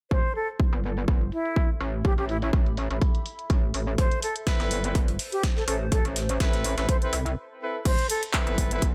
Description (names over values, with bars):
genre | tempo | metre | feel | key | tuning
bass house | 124 BPM | 4/4 | swing 55% on 16ths | A minor | A4 = 440 Hz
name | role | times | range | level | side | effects
concert flute | melody | 0.1-8.2 s | E4 to C5 | -34 LUFS | equal | dub echo
metallic wobble bass | bass | 0.1-8.9 s | G1 to C2 | -31 LUFS | equal | chorus, overdrive, sidechain pumping
electronic kick drum | drums | 0.1-8.9 s | none | -26 LUFS | equal | overdrive
house drum kit | drums | 0.1-8.9 s | crash cymbal, handclaps, hi-hat | -34 LUFS | equal | overdrive, low-pass filter on hats, low-pass filter on cymbals, low-pass filter on snare, low-pass filter on room
warbly tape-like pad | texture | 1.5-8.9 s | A4 to B5 | -43 LUFS | equal | chorus, built-in reverb, sidechain pumping
breakbeat sampler-style drum kit | drums | 4.0-7.3 s | hi-hat, snare drum | -39 LUFS | equal | high-pass filter on hats, high-pass filter on snare
warm horn section | stabs | 4.5-8.8 s | C4 to B4 | -34 LUFS | equal | sidechain pumping, dub echo
room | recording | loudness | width
digital ambience | none | -26 LUFS | mono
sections
0.1-7.9 A section; 7.9-8.9 B section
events
fade-in on ambient pad 0.1-7.9; break 7.4-7.9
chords
0.1 Amadd9